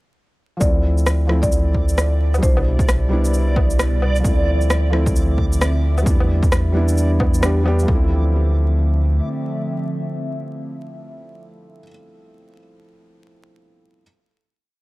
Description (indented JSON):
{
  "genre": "future garage",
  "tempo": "132 BPM",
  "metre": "4/4",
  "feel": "swing 61% on 16ths",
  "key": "D dorian",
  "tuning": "A4 = 440 Hz",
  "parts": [
    { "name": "marimba with medium mallets", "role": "melody", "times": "0.6-3.1 s", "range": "C5 to D5", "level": "-28 LUFS", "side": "equal", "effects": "tape echo" },
    { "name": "felt-muted upright piano", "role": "accompaniment", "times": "0.6-14.0 s", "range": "B2 to G4", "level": "-25 LUFS", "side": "equal", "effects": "sidechain pumping, tape echo" },
    { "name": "warm sub bass", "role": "bass", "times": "0.6-9.2 s", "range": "C2 to E2", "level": "-18 LUFS", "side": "equal", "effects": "sidechain pumping" },
    { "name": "electronic kick drum", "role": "drums", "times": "0.6-8.0 s", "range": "none", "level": "-19 LUFS", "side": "equal", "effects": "overdrive, small room ambience" },
    { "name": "electronic shaker, rim click and woodblock", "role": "drums", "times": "0.6-7.9 s", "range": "none", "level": "-24 LUFS", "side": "equal", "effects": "overdrive, small room ambience" },
    { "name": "backwards swelling texture", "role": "texture", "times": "1.7-7.9 s", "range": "D5", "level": "-31 LUFS", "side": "right 3 dB", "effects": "built-in reverb" },
    { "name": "warbly tape-like pad", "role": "sustained chords", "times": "2.4-12.1 s", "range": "B2 to E5", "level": "-27 LUFS", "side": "equal", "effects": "chorus, built-in reverb, sidechain pumping" }
  ],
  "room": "little or no reverb",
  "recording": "dry, gritty hardware recording, vinyl crackle",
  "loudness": "-16 LUFS",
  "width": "side -20 dB against mid",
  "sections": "0.6-7.9 groove; 7.9-11.5 final chord",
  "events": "none",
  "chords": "0.6 Dm7; 2.4 Cmaj9; 4.2 Dm7; 6.1 Em7; 7.9 Dm7"
}